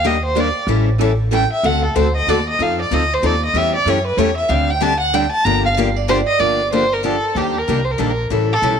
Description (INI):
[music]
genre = acoustic string swing (jazz manouche)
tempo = 189 BPM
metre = 3/4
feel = swing 61% on 8ths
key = G minor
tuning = A4 = 438 Hz
[part]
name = rich violin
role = melody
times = 0.0-8.8 s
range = G4 to Bb5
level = -18 LUFS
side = right 1 dB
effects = none
[part]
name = picked steel-string acoustic guitar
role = accompaniment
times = 0.0-8.7 s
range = D3 to A4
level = -21 LUFS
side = left 12 dB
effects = none
[part]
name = picked steel-string acoustic guitar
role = accompaniment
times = 0.0-8.8 s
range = D3 to A4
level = -24 LUFS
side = right 13 dB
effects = none
[part]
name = upright bass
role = bass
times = 0.0-8.8 s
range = G1 to F#2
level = -21 LUFS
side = equal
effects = none
[part]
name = picked steel-string acoustic guitar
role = second line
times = 5.7-6.4 s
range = D5 to F5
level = -23 LUFS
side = right 6 dB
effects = slapback echo
[sound]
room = light reverb, studio reverb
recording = 1960s-style stereo with parts hard left and right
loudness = -14 LUFS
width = side -7 dB against mid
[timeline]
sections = 0.0-6.4 A section; 6.4-8.8 B section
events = violin solo 0.0-6.4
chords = 0.0 Ebmaj7; 0.7 A7; 1.6 D7; 2.6 F7; 3.5 A7/E; 4.5 D7sus4; 5.5 Gm7; 7.4 Ebmaj7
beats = 0.05 0.36 | 0.68 1.00 1.32 | 1.64 1.96 2.27 | 2.59 2.91 3.23 | 3.54 3.86 4.18 | 4.50 4.82 5.13 | 5.45 5.77 6.09 | 6.41 6.72 7.04 | 7.36 7.68 8.00 | 8.32 8.64